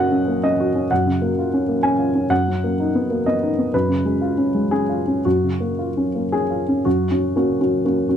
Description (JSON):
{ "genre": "neoclassical minimalist piano", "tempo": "110-133 BPM", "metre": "3/4", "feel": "rubato", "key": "F# major", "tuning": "A4 = 440 Hz", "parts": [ { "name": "dark baby grand piano", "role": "solo", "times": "0.0-8.2 s", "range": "F#2 to G#5", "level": "-17 LUFS", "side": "equal", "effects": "none" } ], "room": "moderate studio ambience, RT60 0.5 s", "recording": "dark, warm production", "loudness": "-17 LUFS", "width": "side -9 dB against mid", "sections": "0.0-6.9 A section; 6.9-8.2 B section", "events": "none", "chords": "0.0 D#m7/F#; 0.9 F#maj7; 2.3 Bmaj7/F#; 3.7 C#7/F#; 5.2 F#maj7; 6.9 F#" }